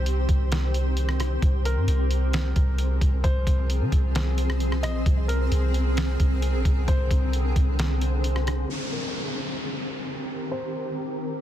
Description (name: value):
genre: hip hop, atmospheric cloud-rap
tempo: 132 BPM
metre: 4/4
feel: half-time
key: C minor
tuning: A4 = 439 Hz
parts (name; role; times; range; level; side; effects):
- felt-muted upright piano; melody; 0.0-10.9 s; Bb4 to Eb5; -37 LUFS; left 2 dB; low-pass filter, tape echo
- shimmering ambient pad; sustained chords; 0.0-11.4 s; D3 to C5; -30 LUFS; equal; chorus, built-in reverb, sidechain pumping, low-pass filter
- soft 808-style bass; bass; 0.0-8.7 s; Bb1 to Eb3; -23 LUFS; equal; none
- trip hop sampler-style drum kit; drums; 0.1-8.6 s; hi-hat, kick drum, rim click, snare drum; -26 LUFS; equal; none
- downlifter; sound effects; 8.7-11.4 s; none; -33 LUFS; equal; none
room: little or no reverb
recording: dense, heavily limited modern master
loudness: -22 LUFS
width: side -12 dB against mid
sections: 0.0-8.7 A section; 8.7-11.4 B section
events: filter sweep 8.7-11.4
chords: 0.0 Cm; 1.4 Ab69/C; 5.1 Bb9; 8.7 Cm7